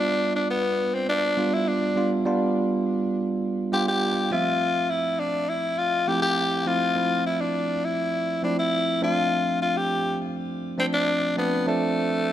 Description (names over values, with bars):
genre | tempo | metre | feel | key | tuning
pop | 102 BPM | 4/4 | straight | unclear | A4 = 440 Hz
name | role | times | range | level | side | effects
growling tenor saxophone | melody | 0.0-12.3 s | A3 to G4 | -24 LUFS | left 2 dB | digital delay
bell-like tine electric piano | accompaniment | 0.0-12.3 s | F3 to E5 | -26 LUFS | right 2 dB | none
room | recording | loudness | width
wet recital hall reverb, RT60 1.3 s, small room ambience | none | -22 LUFS | side -11 dB against mid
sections
0.0-12.3 A section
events
none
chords
0.0 G7; 4.3 Fmaj7; 9.0 Dm7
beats
0.49 1.08 1.67 | 2.26 2.85 3.44 4.02 | 4.61 5.20 5.79 6.38 | 6.96 7.55 8.14 8.73 | 9.32 9.90 10.49 11.08 | 11.67 12.26